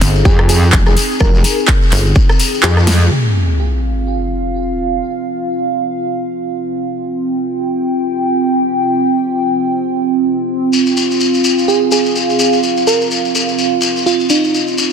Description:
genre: bass house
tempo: 126 BPM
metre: 4/4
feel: swing 58% on 16ths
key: F minor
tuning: A4 = 440 Hz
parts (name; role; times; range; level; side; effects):
- dark analog pad; sustained chords; 0.0-14.9 s; C4 to G5; -16 LUFS; right 2 dB; chorus, phaser, sidechain pumping
- pulsing pluck wobble bass; bass; 0.0-2.1 s; G1; -12 LUFS; equal; chorus, tube saturation, sidechain pumping
- big-room dance drum kit; drums; 0.0-3.0 s; handclaps, hi-hat, rim click, snare drum; -18 LUFS; equal; low-pass filter on snare, low-pass filter on hats, low-pass filter on room
- shekere; percussion; 0.0-3.1, 10.7-14.9 s; none; -18 LUFS; left 5 dB; none
- bell-like FM electric piano; melody; 0.3-3.1, 11.7-14.8 s; Eb4 to Bb4; -18 LUFS; right 2 dB; chorus, ping-pong delay
- metallic wobble bass; bass; 0.3-3.1 s; F1 to F2; -12 LUFS; equal; distortion, chorus, overdrive, sidechain pumping
- electronic kick drum; drums; 0.3-2.3 s; none; -12 LUFS; equal; none
- sub drop and riser; sound effects; 3.1-5.0, 14.7-14.9 s; none; -18 LUFS; equal; none
room: moderate lush hall reverb, RT60 2.3 s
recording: dense, heavily limited modern master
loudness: -12 LUFS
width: side -7 dB against mid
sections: 0.0-3.1 A section; 3.1-14.9 B section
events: drop 0.0-3.1; kick drops out 2.6-3.1; drum fill 2.9; band accent 2.9; impact 3.1-5.0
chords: 0.0 F5

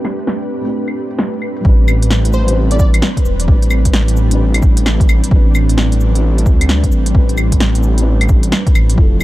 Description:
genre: future garage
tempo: 131 BPM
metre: 4/4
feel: swing 64% on 16ths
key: A minor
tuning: A4 = 436 Hz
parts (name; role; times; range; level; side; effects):
- felt-muted upright piano; accompaniment; 0.0-9.2 s; F3 to B4; -23 LUFS; left 2 dB; vintage 12-bit sampler grit, sidechain pumping, dub echo
- ethereal airy pad; sustained chords; 0.0-9.2 s; F3 to B4; -23 LUFS; right 1 dB; ensemble chorus, built-in reverb, sidechain pumping
- deep house drum kit; drums; 0.0-9.2 s; cabasa, claves, hi-hat, snare drum; -19 LUFS; equal; low-pass filter on perc, low-pass filter on hats, low-pass filter on snare, low-pass filter on room
- swelling detuned saw bass; bass; 1.6-9.2 s; E1 to D2; -14 LUFS; equal; sidechain pumping
- electronic kick drum; drums; 1.6-9.1 s; none; -12 LUFS; equal; none
- plucky unison lead; melody; 2.3-2.9 s; C5 to D5; -25 LUFS; equal; cassette tape, dub echo
room: digital ambience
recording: dark, warm production, low-pass filter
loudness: -11 LUFS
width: side -16 dB against mid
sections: 0.0-1.6 A section; 1.6-9.2 B section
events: filter sweep 0.0-1.6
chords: 0.0 Am11

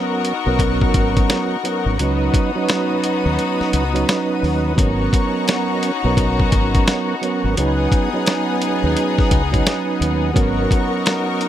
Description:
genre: hip hop, boom-bap hip-hop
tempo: 86 BPM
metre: 4/4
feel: swing 63% on 16ths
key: G# minor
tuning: A4 = 440 Hz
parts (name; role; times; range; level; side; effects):
- percussive tonewheel organ; accompaniment; 0.0-11.5 s; F#3 to B4; -20 LUFS; right 4 dB; chorus vibrato, slow rotary speaker, cassette tape
- lush unison pad; sustained chords; 0.0-11.5 s; B3 to D#6; -27 LUFS; left 1 dB; chorus
- warm chamber string section; stabs; 0.0-11.5 s; B3 to A#4; -24 LUFS; left 7 dB; ping-pong delay
- dusty soul sampler-style drum kit; drums; 0.2-11.5 s; hi-hat, kick drum, snare drum; -18 LUFS; left 1 dB; none
- deep dub fingered electric bass; bass; 0.5-10.7 s; G#1 to D#2; -21 LUFS; left 1 dB; none
room: light reverb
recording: none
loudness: -16 LUFS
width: side -11 dB against mid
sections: 0.0-11.5 A section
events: kick muted 3.4-4.8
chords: 0.0 G#m11; 2.0 C#9sus4; 4.8 G#m11; 7.6 C#9sus4; 10.4 G#m11

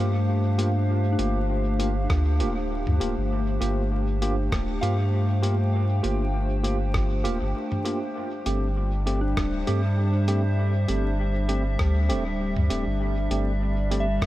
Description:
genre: ambient dub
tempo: 99 BPM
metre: 4/4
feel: swing 55% on 16ths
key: unclear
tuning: A4 = 445 Hz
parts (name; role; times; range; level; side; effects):
- warbly tape-like pad; sustained chords; 0.0-14.3 s; G3 to G5; -29 LUFS; left 1 dB; chorus, built-in reverb
- bright tine electric piano; stabs; 0.0-14.0 s; A3 to G4; -31 LUFS; right 1 dB; medium stereo tremolo, dub echo
- warm sub bass; bass; 0.0-14.3 s; D1 to G2; -24 LUFS; equal; none
- lo-fi sampler-style drum kit; drums; 0.6-14.3 s; hi-hat, rim click, toms; -35 LUFS; equal; dub echo
- soft synth bell; arpeggios; 1.1-14.3 s; D4 to F5; -37 LUFS; left 1 dB; chorus, dub echo
- electronic kick drum; drums; 2.1-14.3 s; none; -28 LUFS; equal; none
room: light reverb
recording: vinyl crackle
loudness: -22 LUFS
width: side -15 dB against mid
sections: 0.0-14.3 A section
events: none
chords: 0.0 Gm7; 8.2 Am7

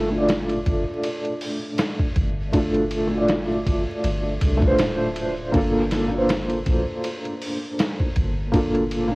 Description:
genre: trip hop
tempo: 80 BPM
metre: 4/4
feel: swing 56% on 16ths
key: G minor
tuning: A4 = 440 Hz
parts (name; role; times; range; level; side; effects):
- felt-muted upright piano; accompaniment; 0.0-9.2 s; A3 to D5; -22 LUFS; equal; tremolo, low-pass filter, cassette tape, tape echo
- soft 808-style bass; bass; 0.0-9.2 s; D1 to C2; -27 LUFS; equal; none
- trip hop sampler-style drum kit; drums; 0.3-9.1 s; hi-hat, kick drum, ride cymbal, snare drum; -26 LUFS; equal; cassette tape
room: light reverb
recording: home recording on cassette, vinyl crackle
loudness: -20 LUFS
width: side -24 dB against mid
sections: 0.0-9.2 A section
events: filter sweep on felt piano 0.0-9.2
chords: 0.0 Dm/G; 5.5 Gm7

